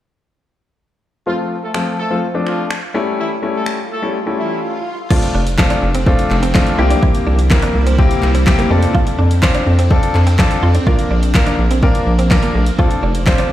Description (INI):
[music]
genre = dance-pop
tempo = 125 BPM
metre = 4/4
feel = straight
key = F major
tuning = A4 = 440 Hz
[part]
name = clear horn section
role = melody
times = 1.3-4.6 s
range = E3 to A4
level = -25 LUFS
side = right 1 dB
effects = sidechain pumping, tape echo
[part]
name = clear baby grand piano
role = accompaniment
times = 1.3-13.5 s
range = F3 to C5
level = -19 LUFS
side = left 3 dB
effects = sidechain pumping
[part]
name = deep house drum kit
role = drums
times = 1.7-13.5 s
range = crash cymbal, finger snaps, handclaps, hi-hat, kick drum, snare drum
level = -15 LUFS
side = equal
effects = none
[part]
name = swell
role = sound effects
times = 3.8-5.1 s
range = none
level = -29 LUFS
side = right 2 dB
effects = none
[part]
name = granular cloud pad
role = sustained chords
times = 5.8-13.5 s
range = C3 to A4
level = -25 LUFS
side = equal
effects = built-in reverb, sidechain pumping
[part]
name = direct-recorded clean electric guitar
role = riff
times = 5.1-13.5 s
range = A3 to F4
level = -24 LUFS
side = right 4 dB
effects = ensemble chorus
[part]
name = round analog bass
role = bass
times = 5.3-13.4 s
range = F1 to F2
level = -14 LUFS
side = equal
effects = sidechain pumping
[sound]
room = light reverb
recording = played on a big sound system in a bare room, stone room reverb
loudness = -12 LUFS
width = side -13 dB against mid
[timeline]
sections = 1.3-5.1 A section; 5.1-13.5 B section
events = swell 3.8-5.1; drums muted 4.1-5.1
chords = 1.3 F; 2.9 A7; 5.1 F6; 6.8 C7; 8.7 F6; 10.9 Bb; 12.8 F6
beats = | 1.27 1.75 2.23 2.71 | 3.19 3.67 4.15 4.63 | 5.11 5.59 6.07 6.55 | 7.03 7.51 7.99 8.47 | 8.95 9.43 9.91 10.39 | 10.87 11.35 11.83 12.31 | 12.79 13.27